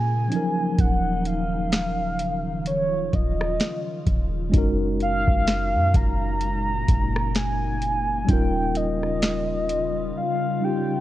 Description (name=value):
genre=contemporary R&B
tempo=64 BPM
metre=4/4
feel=swing 58% on 16ths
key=unclear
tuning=A4 = 438 Hz
part: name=mellow horn-like synth lead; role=melody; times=0.0-11.0 s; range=C#5 to A#5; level=-26 LUFS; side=equal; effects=chorus, ping-pong delay
part: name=mellow tine electric piano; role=accompaniment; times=0.0-11.0 s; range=E#3 to A#4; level=-28 LUFS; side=equal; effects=medium stereo tremolo
part: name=glassy FM pad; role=sustained chords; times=0.0-11.0 s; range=A#2 to G#4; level=-32 LUFS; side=left 1 dB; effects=ensemble chorus, built-in reverb
part: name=clean 808-style bass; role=bass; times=0.0-10.1 s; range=D#1 to A#2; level=-26 LUFS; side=equal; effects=none
part: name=booming analog drum machine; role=drums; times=0.3-9.9 s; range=hi-hat, kick drum, rim click, snare drum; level=-23 LUFS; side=equal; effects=vintage 12-bit sampler grit
room=little or no reverb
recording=worn, warbling old tape, cassette tape, warbly pitch drift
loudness=-21 LUFS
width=side -14 dB against mid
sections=0.0-11.0 A section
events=drums muted 10.2-11.0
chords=0.3 D#m9; 4.5 F#69; 8.3 D#9